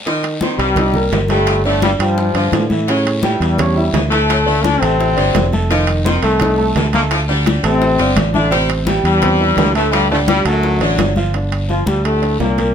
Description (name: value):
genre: latin, salsa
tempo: 170 BPM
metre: 4/4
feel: straight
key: G minor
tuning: A4 = 435 Hz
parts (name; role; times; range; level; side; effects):
- edgy saxophone section; second line; 0.1-11.1 s; C3 to A3; -23 LUFS; left 1 dB; none
- clear grand piano; accompaniment; 0.1-12.7 s; C3 to Eb6; -20 LUFS; right 2 dB; none
- bongos; percussion; 0.1-11.3 s; none; -25 LUFS; left 4 dB; none
- congas; percussion; 0.1-12.7 s; none; -23 LUFS; left 2 dB; none
- guiro; percussion; 0.1-12.7 s; none; -31 LUFS; left 3 dB; none
- timbales; percussion; 0.1-12.7 s; none; -24 LUFS; right 6 dB; none
- brilliant trombone section; melody; 0.6-12.7 s; F#2 to F4; -16 LUFS; left 2 dB; none
- fingered electric bass; bass; 0.6-12.7 s; F1 to A2; -18 LUFS; right 1 dB; none
room: moderate studio reverb, RT60 0.6 s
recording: none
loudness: -12 LUFS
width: side -8 dB against mid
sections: 0.1-11.3 A section; 11.3-12.7 B section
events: none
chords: 0.1 F7sus4 (rootless); 1.5 G5; 2.9 A7; 4.3 D; 5.7 F7; 7.1 D7sus4; 8.5 Am7; 9.9 Dsus4; 10.6 D; 11.3 Gm11